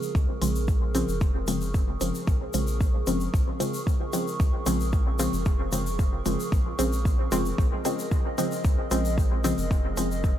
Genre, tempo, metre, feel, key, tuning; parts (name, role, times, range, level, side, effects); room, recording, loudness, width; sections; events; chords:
dub techno; 113 BPM; 4/4; straight; Bb minor; A4 = 440 Hz
warbly tape-like pad; sustained chords; 0.0-10.4 s; Ab4 to Db6; -35 LUFS; right 1 dB; chorus, built-in reverb, sidechain pumping
filtered dub chord stab; stabs; 0.0-10.2 s; Db3 to C4; -28 LUFS; equal; chorus, phaser, sidechain pumping, dub echo
egg shaker; percussion; 0.0-10.3 s; -38 LUFS; left 5 dB
soft dub sub bass; bass; 0.1-10.4 s; F1 to Db2; -30 LUFS; equal; sidechain pumping
electronic kick drum; drums; 0.1-10.3 s; -24 LUFS; equal; studio reverb
electronic hi-hat; drums; 0.4-10.1 s; -36 LUFS; equal; studio reverb
light reverb; -23 LUFS; side -11 dB against mid
0.0-10.4 A section
filter sweep on synth stab 0.0-10.4
0.0 Bbm7